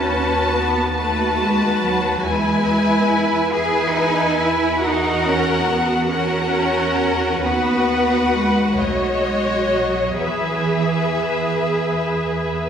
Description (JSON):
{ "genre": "classical, slow romantic movement for string orchestra", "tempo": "41-48 BPM (dotted quarters)", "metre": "6/8", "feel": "rubato", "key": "E major", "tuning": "A4 = 439 Hz", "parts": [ { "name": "warm symphonic violin section", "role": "melody", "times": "0.0-12.7 s", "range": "D#5 to A5", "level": "-24 LUFS", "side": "left 3 dB", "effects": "none" }, { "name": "rich symphonic violin section", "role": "second line", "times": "0.0-12.7 s", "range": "A#4 to C#5", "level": "-23 LUFS", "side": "left 2 dB", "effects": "none" }, { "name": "clear symphonic viola section", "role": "accompaniment", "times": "0.0-12.7 s", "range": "E4 to G#4", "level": "-24 LUFS", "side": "right 1 dB", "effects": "none" }, { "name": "rich symphonic cello section", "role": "bass", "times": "0.0-11.7 s", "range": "E3 to G#4", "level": "-22 LUFS", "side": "right 2 dB", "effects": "none" }, { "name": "rich symphonic double bass section", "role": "bass", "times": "0.0-12.7 s", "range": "B1 to E2", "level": "-27 LUFS", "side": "right 2 dB", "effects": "none" } ], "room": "wet scoring stage reverb, RT60 1.9 s", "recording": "heard from further back in the room", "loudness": "-16 LUFS", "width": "side -8 dB against mid", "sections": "0.0-12.7 A section", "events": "none", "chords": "0.0 B7/D#; 2.3 E; 4.8 F#7/E; 7.4 B/D#; 8.8 B9; 10.2 E", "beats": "0.98 | 2.26 3.54 | 4.83 6.12 | 7.45 8.80 | 10.21 11.67" }